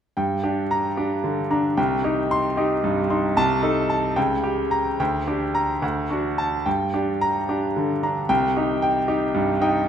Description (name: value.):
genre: classical, virtuoso piano study.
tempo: 74 BPM (dotted quarters).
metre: 6/8.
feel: rubato.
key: G minor.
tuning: A4 = 440 Hz.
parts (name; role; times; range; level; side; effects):
bright grand piano; solo; 0.2-9.9 s; C2 to C6; -20 LUFS; equal; none.
room: moderate scoring stage reverb, RT60 2.2 s.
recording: minimal, uncompressed stereo recording.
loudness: -20 LUFS.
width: side -8 dB against mid.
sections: 0.2-9.9 A section.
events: none.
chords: 0.2 Gm; 1.8 Cm; 3.4 Adim/C; 4.2 Gdim/Db; 5.0 Gm/D; 5.8 D; 6.7 Gm; 8.3 Cm.